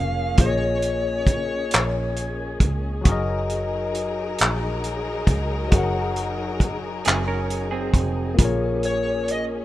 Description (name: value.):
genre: slow six-eight R&B.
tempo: 45 BPM (dotted quarters).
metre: 6/8.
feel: straight.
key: unclear.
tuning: A4 = 440 Hz.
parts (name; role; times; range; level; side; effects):
smooth overdriven lead guitar; melody; 0.0-2.6, 8.9-9.4 s; Db5 to F5; -26 LUFS; left 1 dB; tape echo.
barky tine electric piano; accompaniment; 0.0-9.6 s; Gb3 to Gb5; -28 LUFS; left 4 dB; phaser.
warm symphonic string section; sustained chords; 0.0-9.6 s; Gb3 to Bb4; -31 LUFS; left 2 dB; none.
vintage muted fingered electric bass; bass; 0.0-9.6 s; F1 to Db2; -28 LUFS; right 1 dB; none.
warm soul drum kit; drums; 0.4-9.5 s; handclaps, hi-hat, kick drum; -20 LUFS; right 1 dB; none.
semi-hollow electric guitar; second line; 7.1-8.4 s; C4 to Bb4; -28 LUFS; right 6 dB; lush chorus.
room: small room ambience.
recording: rough home demo mix.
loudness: -20 LUFS.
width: side -14 dB against mid.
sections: 0.0-9.6 A section.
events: none.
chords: 0.0 Bbm7; 3.1 Gb69; 8.4 Bbm7.